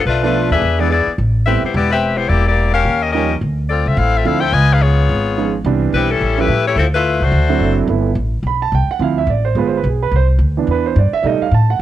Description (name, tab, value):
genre	jazz, big band swing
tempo	215 BPM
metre	4/4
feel	swing 60% on 8ths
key	G major from 7.9 s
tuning	A4 = 440 Hz
part	upright bass	bass	0.0-11.8 s	E1 to B2	-16 LUFS	equal	none
part	edgy saxophone section	melody	0.1-7.8 s	F3 to Ab5	-16 LUFS	left 5 dB	cassette tape
part	warm grand piano	accompaniment	0.2-11.8 s	E3 to B5	-18 LUFS	right 8 dB	cassette tape
room	light reverb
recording	home recording on cassette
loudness	-13 LUFS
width	side -12 dB against mid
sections	0.0-7.9 A section; 7.9-11.8 B section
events	grand piano solo 7.9-11.8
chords	0.1 Bm7b5; 0.6 E7; 1.2 Am9; 2.3 Em7b5; 2.9 Eb9; 3.4 Dm9; 4.5 Db9; 5.7 Cmaj7; 6.2 A7b13; 6.8 Dm9; 7.3 D7; 7.9 G6; 9.0 Dm7; 9.6 G7b9; 10.1 Cmaj9; 11.2 Baug7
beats	| 0.06 0.34 0.62 0.90 | 1.18 1.46 1.74 2.02 | 2.30 2.58 2.85 3.13 | 3.41 3.69 3.97 4.25 | 4.53 4.81 5.09 5.37 | 5.65 5.93 6.21 6.49 | 6.77 7.05 7.33 7.61 | 7.89 8.17 8.45 8.72 | 9.01 9.28 9.56 9.84 | 10.12 10.40 10.68 10.96 | 11.24 11.52 11.80